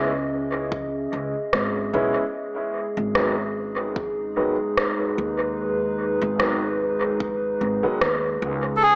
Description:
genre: ambient dub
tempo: 74 BPM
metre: 4/4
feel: swing 56% on 16ths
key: unclear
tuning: A4 = 440 Hz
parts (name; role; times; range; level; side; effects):
- warbly tape-like pad; sustained chords; 0.0-9.0 s; G#3 to E5; -25 LUFS; equal; chorus, built-in reverb
- dark upright piano; stabs; 0.0-8.0 s; D#3 to E4; -27 LUFS; equal; dub echo
- upright bass; bass; 0.0-9.0 s; G#1 to D#2; -30 LUFS; equal; none
- electronic kick drum; drums; 0.7-7.4 s; none; -32 LUFS; equal; none
- electronic rim click; drums; 1.5-8.2 s; none; -26 LUFS; equal; dub echo
- melodica; melody; 8.8-9.0 s; G#4 to A4; -14 LUFS; equal; vintage 12-bit sampler grit
- drifting glass-harmonics texture; texture; 8.8-9.0 s; none; barely audible; none; none
room: moderate spring reverb, RT60 2.5 s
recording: echo-heavy mix, small speaker sound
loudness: -21 LUFS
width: side -32 dB against mid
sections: 0.0-9.0 A section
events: none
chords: 0.0 C#m7; 2.3 G#m

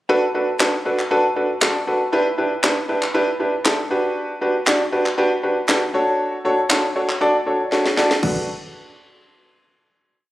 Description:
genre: dance-pop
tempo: 118 BPM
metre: 4/4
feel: straight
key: B minor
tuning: A4 = 440 Hz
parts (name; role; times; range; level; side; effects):
- clear concert grand piano; accompaniment; 0.1-8.5 s; D4 to D5; -18 LUFS; equal; sidechain pumping
- house drum kit; drums; 0.6-8.4 s; crash cymbal, handclaps, kick drum, snare drum; -20 LUFS; equal; none
room: moderate lush hall reverb, RT60 2.0 s, digital ambience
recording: recorded on a phone in the room, club reverb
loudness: -17 LUFS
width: side -16 dB against mid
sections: 0.1-8.2 verse; 8.2-10.3 final chord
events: drum fill 7.7-8.2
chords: 0.1 Bm7; 2.1 Em7; 3.9 Gmaj7; 5.9 Dmaj7; 8.2 Bm7

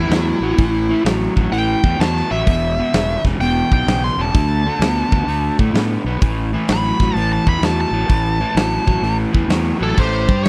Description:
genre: blues rock power trio and southern rock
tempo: 128 BPM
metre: 4/4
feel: swing 66% on 8ths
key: A mixolydian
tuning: A4 = 438 Hz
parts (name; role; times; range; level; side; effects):
- bluesy overdriven lead guitar; melody; 0.0-10.5 s; E4 to C6; -24 LUFS; equal; distortion
- crunchy overdriven guitar; riff; 0.0-10.5 s; E2 to G4; -23 LUFS; equal; none
- fuzz fingered electric bass; bass; 0.0-10.5 s; E1 to A2; -23 LUFS; equal; overdrive
- big rock drum kit; drums; 0.1-10.5 s; crash cymbal, hi-hat, kick drum, snare drum; -21 LUFS; equal; none
- nasal lead guitar with a parked wah; second line; 9.8-10.4 s; E4 to G4; -30 LUFS; equal; overdrive
room: little or no reverb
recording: dry, close 1970s-style studio recording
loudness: -17 LUFS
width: mono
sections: 0.0-10.0 A section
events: lead electric guitar solo 0.0-10.0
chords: 0.0 A5; 2.5 E5; 4.3 D5; 6.2 A5; 10.0 Am7

